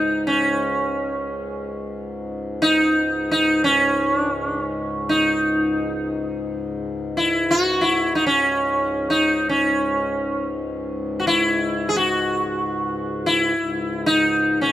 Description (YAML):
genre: indian classical, Hindustani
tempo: free time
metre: none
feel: none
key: C# raga kafi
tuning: A4 = 439 Hz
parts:
  - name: sitar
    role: melody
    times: 0.0-14.7 s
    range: C#4 to G#4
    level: -19 LUFS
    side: equal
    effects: none
  - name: pedal harmonium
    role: drone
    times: 0.0-14.7 s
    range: C#2 to G#2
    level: -28 LUFS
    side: left 2 dB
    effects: none
room: light reverb, small room ambience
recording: rough home demo mix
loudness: -18 LUFS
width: side -13 dB against mid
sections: 0.0-14.7 A section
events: none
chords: none